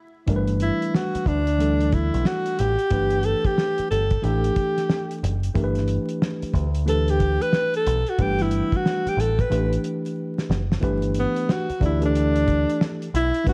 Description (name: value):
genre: hip hop, jazz-hop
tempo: 91 BPM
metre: 4/4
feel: swing 64% on 16ths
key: G major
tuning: A4 = 441 Hz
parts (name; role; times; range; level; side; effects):
- mellow tine electric piano; accompaniment; 0.3-13.5 s; E3 to D5; -29 LUFS; equal; none
- deep dub picked electric bass; bass; 0.3-13.5 s; F#1 to D2; -26 LUFS; equal; none
- cloth-damped thuddy drum kit; drums; 0.3-13.5 s; hi-hat, kick drum, snare drum; -27 LUFS; equal; none
- clear alto saxophone; melody; 0.6-13.5 s; B3 to B4; -26 LUFS; equal; none
room: small room ambience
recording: dark, warm production, vinyl crackle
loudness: -22 LUFS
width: mono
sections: 0.3-10.8 A section; 10.8-13.5 B section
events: break 0.0; alto saxophone solo 0.3-10.8; drum fill 10.2-10.8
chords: 0.3 Gadd9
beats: | 0.28 0.94 1.60 2.26 | 2.92 3.58 4.24 4.89 | 5.55 6.21 6.87 7.53 | 8.19 8.85 9.51 10.17 | 10.83 11.49 12.15 12.81 | 13.47